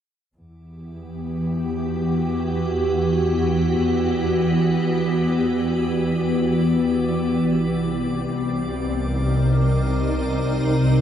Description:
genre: ambient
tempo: free time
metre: none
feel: none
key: E minor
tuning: A4 = 440 Hz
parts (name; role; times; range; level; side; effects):
- soft additive organ-like pad; sustained chords; 1.1-11.0 s; C3 to D5; -19 LUFS; equal; ensemble chorus, built-in reverb, shimmer reverb
- warm studio double bass section; bass; 0.4-11.0 s; C2 to E2; -29 LUFS; equal; none
- drifting glass-harmonics texture; texture; 1.2-11.0 s; D6; -40 LUFS; left 2 dB; chorus, built-in reverb, shimmer reverb
room: wet cathedral reverb, RT60 5.4 s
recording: in a vast, echoing space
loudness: -19 LUFS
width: side -9 dB against mid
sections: 0.3-11.0 A section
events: fade-in on synth texture 0.3-11.0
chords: 0.3 Em7; 7.5 Cm7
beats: free time

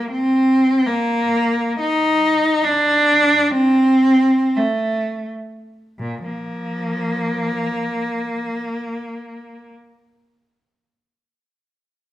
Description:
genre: classical, free, expressive piece for unaccompanied cello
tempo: free time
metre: none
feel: none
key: Bb major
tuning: A4 = 442 Hz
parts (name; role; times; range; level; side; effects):
- warm cello; solo; 0.0-9.7 s; Bb2 to Eb4; -16 LUFS; equal; none
room: light reverb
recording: close, detailed microphones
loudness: -16 LUFS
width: side -13 dB against mid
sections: 0.0-6.0 A section; 6.0-9.4 B section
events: slowing down 0.0-6.0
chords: none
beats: free time

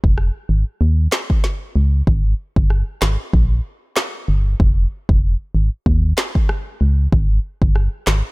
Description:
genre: dancehall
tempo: 95 BPM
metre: 4/4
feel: swing 56% on 16ths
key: unclear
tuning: A4 = 440 Hz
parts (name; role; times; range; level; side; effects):
- organ-like FM bass; bass; 0.0-8.2 s; F1 to Eb2; -16 LUFS; equal; none
- afro-pop drum kit; drums; 0.0-8.2 s; handclaps, kick drum, rim click, snare drum; -17 LUFS; equal; none
room: little or no reverb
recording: none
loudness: -15 LUFS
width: side -24 dB against mid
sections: 0.0-7.1 A section; 7.1-8.3 B section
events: none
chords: none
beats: 0.18 0.81 1.44 | 2.07 2.70 3.33 3.97 | 4.60 5.23 5.86 6.49 | 7.12 7.76

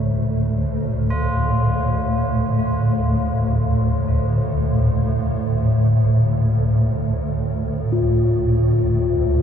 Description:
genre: dark ambient drone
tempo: free time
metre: none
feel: none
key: D minor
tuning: A4 = 441 Hz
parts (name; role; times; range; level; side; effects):
- tubular bells; arpeggios; 0.0-9.4 s; F4; -30 LUFS; left 1 dB; ping-pong delay
- swarming drone; drone; 0.0-9.4 s; D2 to A2; -17 LUFS; equal; built-in reverb
- bronze singing bowl; texture; 7.9-9.4 s; F4; -21 LUFS; left 4 dB; none
room: moderate huge ambient reverb, RT60 8.8 s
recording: dark, warm production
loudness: -17 LUFS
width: side -8 dB against mid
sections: 0.0-9.4 A section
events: none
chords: 0.0 Dm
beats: free time

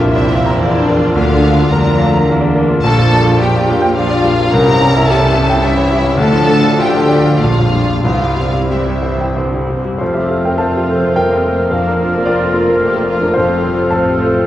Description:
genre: classical, romantic movement for piano and orchestra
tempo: 90-112 BPM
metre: 3/4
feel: rubato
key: F major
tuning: A4 = 440 Hz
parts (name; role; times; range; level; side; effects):
- warm concert grand piano; melody; 0.0-14.5 s; Bb1 to Bb5; -14 LUFS; left 1 dB; none
- warm studio violin section; melody; 0.0-14.5 s; C4 to Bb5; -22 LUFS; left 2 dB; none
- warm studio violin section; second line; 0.0-14.5 s; C4 to Bb4; -20 LUFS; left 1 dB; none
- warm studio viola section; accompaniment; 0.0-14.5 s; E3 to F4; -23 LUFS; right 2 dB; none
- dark French horn section; sustained chords; 0.0-14.5 s; E3 to D4; -22 LUFS; left 1 dB; none
- dark studio double bass section; bass; 0.0-14.5 s; F1 to F2; -22 LUFS; right 2 dB; none
- mellow tuba; bass; 0.0-9.8 s; Bb1 to F2; -22 LUFS; right 3 dB; none
- warm studio cello section; bass; 0.0-14.5 s; F2 to G3; -23 LUFS; right 3 dB; none
- clear oboe; second line; 10.0-14.5 s; F5; -24 LUFS; right 2 dB; none
- mellow hollow small flute group; second line; 10.0-14.5 s; D4 to C5; -23 LUFS; equal; none
- warm clarinet; second line; 10.0-14.5 s; A4 to C5; -22 LUFS; equal; none
- mellow bassoon; accompaniment; 10.0-14.5 s; F3 to A3; -22 LUFS; right 1 dB; none
room: wet recital hall reverb, RT60 1.5 s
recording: worn, warbling old tape, cassette tape, warbly pitch drift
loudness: -11 LUFS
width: side -13 dB against mid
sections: 0.0-10.0 A section; 10.0-14.5 B section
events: none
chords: 0.0 Bb; 1.2 Bb/D; 2.8 Gm7/Bb; 4.5 C7b9; 6.2 Dm; 7.4 Gm7/Bb; 8.0 C; 10.0 F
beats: 0.01 0.58 | 1.15 1.71 2.28 | 2.84 3.40 3.95 | 4.51 5.07 5.62 | 6.20 6.79 7.40 | 8.05 8.71 9.37 | 10.00 10.58 11.16 | 11.72 12.26 12.80 | 13.36 13.93

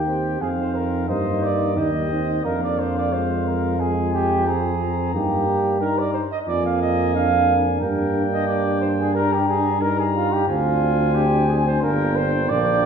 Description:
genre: classical, brass quintet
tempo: 89 BPM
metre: 4/4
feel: straight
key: Eb major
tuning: A4 = 441 Hz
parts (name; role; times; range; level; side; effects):
- mellow trumpet; melody; 0.0-12.9 s; Eb5 to Bb5; -28 LUFS; left 7 dB; none
- warm flugelhorn; second line; 0.0-12.9 s; F4 to F5; -23 LUFS; right 3 dB; none
- clear trombone; accompaniment; 0.0-12.9 s; G3 to C4; -28 LUFS; right 3 dB; none
- mellow French horn; accompaniment; 0.0-12.9 s; D4 to F4; -27 LUFS; left 2 dB; none
- warm tuba; bass; 0.0-12.9 s; G1 to G2; -23 LUFS; right 1 dB; none
room: wet recital hall reverb, RT60 1.4 s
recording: recorded in a church or concert hall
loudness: -18 LUFS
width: side -7 dB against mid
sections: 0.0-12.9 A section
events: none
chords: 0.0 Eb; 1.1 Eb/G; 2.4 Bb7/F; 5.1 Eb/G; 6.5 Bb7/F; 7.8 Eb/G; 10.5 Dm7b5; 11.8 Gm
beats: 0.40 1.08 1.76 | 2.44 3.12 3.79 4.46 | 5.13 5.80 6.47 7.14 | 7.81 8.47 9.14 9.81 | 10.48 11.15 11.83 12.50

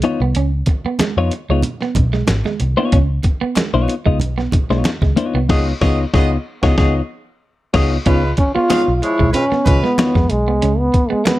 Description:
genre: funk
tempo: 93 BPM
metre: 4/4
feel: straight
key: Db mixolydian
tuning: A4 = 440 Hz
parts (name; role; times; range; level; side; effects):
- clean electric guitar; accompaniment; 0.0-10.2 s; Cb4 to Eb5; -19 LUFS; left 5 dB; none
- clean electric guitar; riff; 0.0-11.4 s; Ab3 to Db4; -23 LUFS; right 6 dB; none
- boom bap sampler-style drum kit; drums; 0.0-11.4 s; crash cymbal, hi-hat, kick drum, snare drum; -17 LUFS; equal; none
- congas; percussion; 0.0-11.4 s; none; -27 LUFS; right 4 dB; none
- vintage muted picked electric bass; bass; 0.2-11.2 s; Ab1 to F2; -18 LUFS; equal; none
- group handclap; percussion; 1.0-11.4 s; none; -32 LUFS; left 4 dB; none
- warm horn section; second line; 5.5-9.9 s; F3 to F5; -22 LUFS; equal; none
- breathy trombone; melody; 8.4-11.4 s; Ab3 to F4; -17 LUFS; equal; none
room: studio reverb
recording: dark, warm production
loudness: -14 LUFS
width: side -16 dB against mid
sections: 0.0-8.1 A section; 8.1-11.4 B section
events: band accent 5.5-8.1; trombone solo 8.1-11.4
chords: 0.0 Db9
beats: | 0.36 1.00 1.64 2.29 | 2.93 3.57 4.21 4.86 | 5.50 6.14 6.78 7.42 | 8.06 8.71 9.35 9.99 | 10.63 11.27

